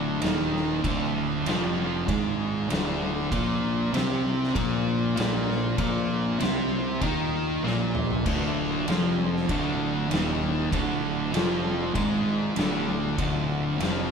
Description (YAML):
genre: stoner and doom metal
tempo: 97 BPM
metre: 4/4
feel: straight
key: D phrygian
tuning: A4 = 440 Hz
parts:
  - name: swarming drone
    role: sustained chords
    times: 0.8-14.1 s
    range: Bb3 to D5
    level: -43 LUFS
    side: left 1 dB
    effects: none
  - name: crunchy overdriven guitar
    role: riff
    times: 0.0-14.1 s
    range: D2 to Eb4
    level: -32 LUFS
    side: right 1 dB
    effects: none
  - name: fuzz guitar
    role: riff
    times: 0.0-14.1 s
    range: D2 to Eb4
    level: -29 LUFS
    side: right 5 dB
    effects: distortion
  - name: thick fuzz guitar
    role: riff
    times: 0.0-14.1 s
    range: D2 to Eb4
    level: -30 LUFS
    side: left 6 dB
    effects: distortion
  - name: fuzz fingered electric bass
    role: bass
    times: 0.0-14.1 s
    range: D1 to Eb2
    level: -33 LUFS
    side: equal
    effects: overdrive, tube saturation
  - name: oversized low-tuned drum kit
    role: drums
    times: 0.2-14.0 s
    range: crash cymbal, kick drum, ride cymbal, snare drum, toms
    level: -30 LUFS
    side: equal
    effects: none
room: light reverb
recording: band playing live in one room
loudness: -23 LUFS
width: side -6 dB against mid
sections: 0.0-14.1 A section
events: drum fill 7.6-8.3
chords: 0.0 Dm; 3.3 Bb5; 8.3 Dm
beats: 0.23 | 0.85 1.47 2.08 2.70 | 3.32 3.94 4.55 5.17 | 5.79 6.41 7.02 7.64 | 8.26 8.87 9.49 10.11 | 10.72 11.34 11.95 12.57 | 13.18 13.79